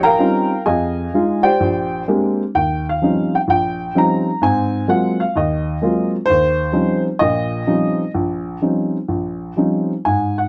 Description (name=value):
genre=solo jazz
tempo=128 BPM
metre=4/4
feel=swing 67% on 8ths, rubato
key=Eb mixolydian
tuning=A4 = 435 Hz
part: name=dark upright piano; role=solo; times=0.0-10.5 s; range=Bb1 to Bb5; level=-18 LUFS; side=equal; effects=none
room=light reverb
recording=close, detailed microphones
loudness=-18 LUFS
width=mono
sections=0.0-2.6 A section; 2.6-10.5 B section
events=upright piano solo 0.0-2.6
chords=0.0 Eb13; 0.7 Fm7; 1.6 Bb13; 2.6 Eb13; 4.4 Ab13; 6.3 Eb13